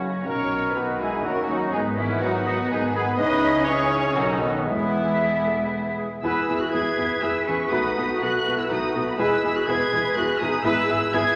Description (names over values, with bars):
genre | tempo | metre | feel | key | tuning
quick classical-period movement for symphony orchestra | 122 BPM | 3/4 | rubato | E major from 3.2 s | A4 = 440 Hz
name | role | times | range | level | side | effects
bright silver concert flute | second line | 0.0-11.4 s | B4 to D#6 | -33 LUFS | equal | none
muted chamber violin section | second line | 0.0-11.2 s | D#4 to E5 | -33 LUFS | equal | none
mellow bassoon | accompaniment | 0.0-11.4 s | C#3 to A3 | -36 LUFS | equal | none
dark French horn section | sustained chords | 0.0-10.8 s | D#3 to G#4 | -32 LUFS | equal | none
warm trumpet section | stabs | 0.0-10.8 s | B3 to B4 | -30 LUFS | equal | none
muted chamber cello section | bass | 0.0-11.4 s | E2 to B4 | -34 LUFS | equal | none
muted chamber double bass section | bass | 0.0-11.2 s | E1 to E2 | -38 LUFS | equal | none
muted chamber violin section | melody | 0.3-11.4 s | F#5 to G#6 | -32 LUFS | equal | none
clear clarinet | second line | 0.3-11.4 s | B3 to B4 | -33 LUFS | equal | none
muted chamber viola section | accompaniment | 0.8-11.2 s | G#3 to F#4 | -31 LUFS | equal | none
room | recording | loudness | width
wet scoring stage reverb, RT60 1.6 s | vinyl crackle | -23 LUFS | mono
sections
0.0-6.2 A section; 6.2-11.4 B section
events
none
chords
0.3 B; 1.2 D#m; 1.7 G#m; 3.2 C#m; 4.2 B7; 4.7 E; 7.7 B7; 9.2 E; 10.6 E/G#